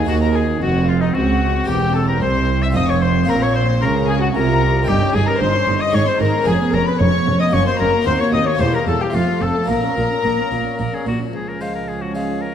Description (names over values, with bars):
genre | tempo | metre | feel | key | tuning
classical, baroque-style concerto movement with solo episodes | 112 BPM | 3/4 | straight | Bb minor | A4 = 441 Hz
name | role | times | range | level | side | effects
clear oboe | melody | 0.0-12.5 s | Eb4 to E5 | -24 LUFS | left 3 dB | none
rich chamber violin section | melody | 0.0-12.5 s | Eb5 to E6 | -27 LUFS | left 4 dB | none
warm chamber violin section | second line | 0.0-12.5 s | Db4 to E5 | -23 LUFS | left 4 dB | none
dark chamber viola section | accompaniment | 0.0-12.5 s | E3 to F4 | -24 LUFS | equal | none
harpsichord | accompaniment | 0.0-12.5 s | C2 to Bb4 | -25 LUFS | equal | none
dark chamber cello section | bass | 0.0-12.5 s | C2 to Db3 | -22 LUFS | right 3 dB | none
rich chamber double bass section | bass | 0.0-11.1 s | E1 to Eb2 | -21 LUFS | right 3 dB | none
room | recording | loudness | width
moderate concert hall reverb, RT60 1.8 s | dark, warm production | -15 LUFS | side -9 dB against mid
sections
0.0-11.3 A section; 11.3-12.5 B section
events
none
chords
0.1 Cdim; 1.7 C7/E; 2.8 F; 3.3 Bbm; 4.9 Eb7/G; 5.9 Ab; 6.5 Db7/F; 7.5 Gb; 8.1 Cm7b5/Eb; 8.6 Edim7; 9.1 F; 9.7 Bbm; 11.3 Db